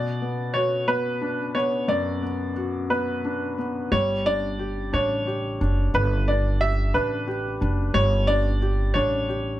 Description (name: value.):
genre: pop.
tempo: 60 BPM (dotted quarters).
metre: 6/8.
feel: straight.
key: unclear.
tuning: A4 = 438 Hz.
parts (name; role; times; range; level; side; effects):
clear baby grand piano; melody; 0.0-9.6 s; B4 to E5; -25 LUFS; right 1 dB; none.
felt-muted upright piano; accompaniment; 0.0-9.6 s; F#2 to G4; -28 LUFS; left 2 dB; none.
upright bass; bass; 3.9-9.6 s; F#1 to A1; -24 LUFS; right 1 dB; none.
room: studio ambience.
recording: none.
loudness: -22 LUFS.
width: side -14 dB against mid.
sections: 0.0-3.9 A section; 3.9-9.6 B section.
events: none.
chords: 0.0 Bm; 3.9 G.